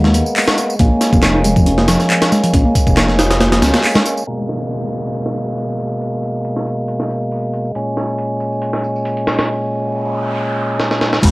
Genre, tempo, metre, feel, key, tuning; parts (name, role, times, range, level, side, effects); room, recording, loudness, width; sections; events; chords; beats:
breakbeat, breaks; 138 BPM; 4/4; swing 53% on 16ths; A4 = 440 Hz
percussive tonewheel organ; sustained chords; 0.0-11.3 s; A#2 to C#4; -19 LUFS; equal; overdrive, sidechain pumping, low-pass filter
vintage muted picked electric bass; riff; 0.0-4.0, 11.2-11.3 s; E#3 to D#4; -16 LUFS; equal; vintage 12-bit sampler grit, tape echo
dark detuned saw bass; bass; 0.0-3.7, 11.2-11.3 s; E#1 to D#2; -16 LUFS; equal
breakbeat sampler-style drum kit; drums; 0.0-11.3 s; crash cymbal, hi-hat, kick drum, snare drum; -16 LUFS; equal; low-pass filter on kick, low-pass filter on hats, low-pass filter on snare, low-pass filter on cymbals, low-pass filter on room
electronic tambourine and handclaps; drums; 0.1-11.3 s; -21 LUFS; equal; overdrive
downlifter, noise sweep and sub drop; sound effects; 4.3-11.3 s; -28 LUFS; equal
light reverb; dry, gritty hardware recording, vinyl crackle, low-pass filter; -14 LUFS; side -22 dB against mid
0.0-4.3 A section; 4.3-11.2 B section
band accent 3.8; filter sweep on tonewheel organ 4.3-11.2; filter sweep 4.3-11.2; noise sweep 9.8-11.2; drum fill 10.8-11.2
0.0 G#madd9; 0.8 A#m7; 4.3 G#madd9; 7.8 A#m7
0.36 | 0.80 1.23 1.67 2.10 | 2.54 2.97 3.40 3.84 | 4.28 4.71 5.14 5.58 | 6.01 6.45 6.88 7.32 | 7.75 8.19 8.62 9.06 | 9.49 9.93 10.36 10.80 | 11.23